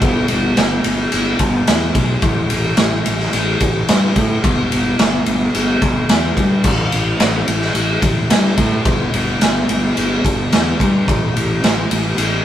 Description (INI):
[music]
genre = classic rock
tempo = 109 BPM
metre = 4/4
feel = straight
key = unclear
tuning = A4 = 440 Hz
[part]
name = fuzz fingered electric bass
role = bass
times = 0.0-12.4 s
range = G1 to A2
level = -18 LUFS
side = equal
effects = overdrive
[part]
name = raw garage drum kit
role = drums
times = 0.0-12.3 s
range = crash cymbal, kick drum, ride cymbal, snare drum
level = -15 LUFS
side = equal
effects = none
[sound]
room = moderate stone room reverb, RT60 1.3 s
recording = rough rehearsal-room recording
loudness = -13 LUFS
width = side -11 dB against mid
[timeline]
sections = 0.0-12.4 A section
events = none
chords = none